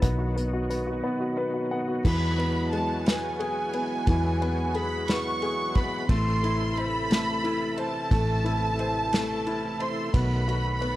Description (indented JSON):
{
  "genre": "six-eight pop ballad",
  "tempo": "59 BPM (dotted quarters)",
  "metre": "6/8",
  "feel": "straight",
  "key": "E major",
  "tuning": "A4 = 440 Hz",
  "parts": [
    { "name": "warm upright piano", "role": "accompaniment", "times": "0.0-11.0 s", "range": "E3 to F#5", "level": "-30 LUFS", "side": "left 2 dB", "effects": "none" },
    { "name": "overdriven tonewheel organ", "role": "sustained chords", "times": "0.0-11.0 s", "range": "B2 to A4", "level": "-32 LUFS", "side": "right 1 dB", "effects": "chorus vibrato, slow rotary speaker" },
    { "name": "vintage muted fingered electric bass", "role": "bass", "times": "0.0-11.0 s", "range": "A1 to E2", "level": "-29 LUFS", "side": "equal", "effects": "none" },
    { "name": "unplugged drum kit", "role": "drums", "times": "0.0-11.0 s", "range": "crash cymbal, hi-hat, kick drum, ride cymbal, snare drum", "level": "-27 LUFS", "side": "equal", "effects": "none" },
    { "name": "warm studio violin section", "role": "second line", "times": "2.0-11.0 s", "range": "G#5 to C#6", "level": "-30 LUFS", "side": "right 2 dB", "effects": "none" }
  ],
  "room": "studio reverb",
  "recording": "worn, warbling old tape, cassette tape, warbly pitch drift",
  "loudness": "-24 LUFS",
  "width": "side -15 dB against mid",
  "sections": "0.0-2.1 A section; 2.1-11.0 B section",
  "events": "upright piano fill 1.0-2.1",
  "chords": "0.0 B; 2.1 Eadd9; 6.1 Am; 10.1 B7",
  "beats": "| 0.03 1.04 | 2.05 3.06 | 4.07 5.08 | 6.09 7.11 | 8.12 9.13 | 10.14"
}